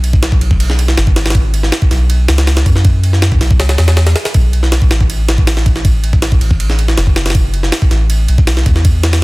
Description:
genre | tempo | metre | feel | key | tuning
drum and bass, jungle | 160 BPM | 4/4 | straight | unclear | A4 = 440 Hz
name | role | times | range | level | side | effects
soft dub sub bass | bass | 0.0-9.2 s | F#1 to F#2 | -12 LUFS | equal | tube saturation
jungle sampler-style drum kit | drums | 0.0-9.2 s | kick drum, ride cymbal, snare drum | -12 LUFS | equal | none
room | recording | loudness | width
little or no reverb | dense, heavily limited modern master | -9 LUFS | side -23 dB against mid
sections
0.0-4.3 A section; 4.3-9.2 A section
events
drop 0.0-4.3, 4.3-9.2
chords
none

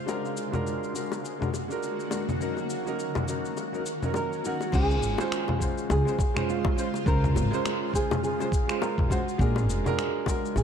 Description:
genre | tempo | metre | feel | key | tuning
sunset chillout | 103 BPM | 4/4 | swing 58% on 16ths | Db major | A4 = 439 Hz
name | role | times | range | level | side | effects
shimmering ambient pad | sustained chords | 0.0-10.6 s | Db3 to C5 | -34 LUFS | right 1 dB | chorus, built-in reverb, phaser
dark concert grand piano | accompaniment | 0.1-10.6 s | Gb3 to C5 | -31 LUFS | moving between left 5 dB and right 7 dB | auto-pan, digital delay
dusty soul sampler-style drum kit | drums | 0.1-10.6 s | congas, crash cymbal, finger snaps, shaker | -33 LUFS | left 2 dB | none
bongos | percussion | 0.1-10.6 s | none | -35 LUFS | left 6 dB | none
nylon-string guitar | melody | 4.2-10.6 s | F4 to Bb4 | -32 LUFS | right 1 dB | ping-pong delay
upright bass | bass | 4.7-10.6 s | F1 to Db2 | -25 LUFS | equal | none
electronic kick drum | drums | 4.7-10.4 s | none | -27 LUFS | equal | none
room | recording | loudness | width
light reverb | dark, warm production | -25 LUFS | side -8 dB against mid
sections
0.0-4.7 A section; 4.7-10.6 B section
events
none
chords
0.1 Bb7b13; 2.4 Ebm7; 4.7 Dbmaj7; 9.4 Bb7b13

